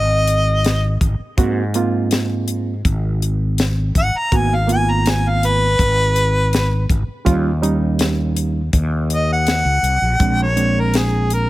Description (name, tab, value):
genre	straight-eighth soul blues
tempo	82 BPM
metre	4/4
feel	straight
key	unclear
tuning	A4 = 440 Hz
part	warm harmonica	melody	0.0-11.5 s	Ab4 to Bb5	-18 LUFS	equal	overdrive
part	fretless electric bass	bass	0.0-11.5 s	Ab1 to Ab2	-18 LUFS	equal	wide subtle chorus
part	tight funk drum kit	drums	0.3-11.5 s	hi-hat, kick drum, snare drum	-20 LUFS	left 1 dB	none
part	barky reed electric piano	accompaniment	1.4-11.5 s	G3 to Gb4	-21 LUFS	right 4 dB	overdrive
room	little or no reverb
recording	none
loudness	-15 LUFS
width	side -17 dB against mid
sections	0.0-11.5 A section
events	none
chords	0.0 Abadd9; 4.3 Abm; 7.3 Eb7; 10.2 Bb9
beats	0.64 | 1.37 2.11 2.84 3.58 | 4.31 5.05 5.79 6.52 | 7.26 7.99 8.73 9.46 | 10.20 10.93